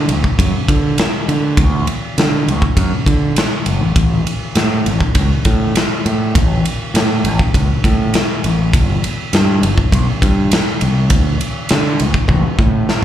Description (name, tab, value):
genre	blues rock power trio and southern rock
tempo	101 BPM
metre	4/4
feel	straight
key	unclear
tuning	A4 = 440 Hz
part	growling fingered electric bass	bass	0.0-12.9 s	F#1 to D3	-15 LUFS	equal	overdrive
part	big rock drum kit	drums	0.1-13.0 s	kick drum, ride cymbal, snare drum, toms	-15 LUFS	equal	none
room	little or no reverb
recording	live gig heard through the venue's PA, club reverb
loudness	-12 LUFS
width	side -11 dB against mid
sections	0.0-13.0 A section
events	drum fill 12.3-13.0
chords	none